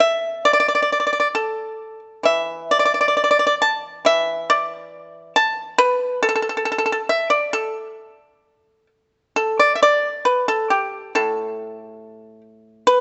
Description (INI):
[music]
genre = chinese traditional, Chinese solo plucked strings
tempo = 64-71 BPM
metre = 2/4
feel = rubato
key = A shang mode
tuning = A4 = 441 Hz
[part]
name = pipa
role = solo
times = 0.0-13.0 s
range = A2 to A5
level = -19 LUFS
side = equal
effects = none
[sound]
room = light reverb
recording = nothing above 8.0 kHz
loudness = -19 LUFS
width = mono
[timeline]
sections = 0.0-9.4 A section; 9.4-13.0 B section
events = none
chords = none